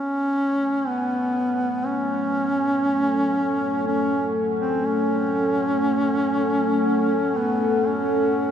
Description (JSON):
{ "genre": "dark ambient drone", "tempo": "free time", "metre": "none", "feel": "none", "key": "F# minor", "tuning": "A4 = 442 Hz", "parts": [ { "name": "mellow duduk", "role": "melody", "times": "0.0-8.5 s", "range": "B3 to C#4", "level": "-22 LUFS", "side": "equal", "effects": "diffuse ambient delay" }, { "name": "deep dark ambient pad", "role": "sustained chords", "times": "0.6-8.5 s", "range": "A3 to F#5", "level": "-24 LUFS", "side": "equal", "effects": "chorus, built-in reverb" }, { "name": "bowed-like drone", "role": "drone", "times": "0.6-8.5 s", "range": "F#2 to F#3", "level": "-37 LUFS", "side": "right 2 dB", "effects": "built-in reverb" } ], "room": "wet huge ambient reverb, RT60 8.0 s", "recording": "none", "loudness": "-20 LUFS", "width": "side -9 dB against mid", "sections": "0.0-8.5 A section", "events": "fade-in on synth drone 0.0-8.5", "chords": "0.0 F#m" }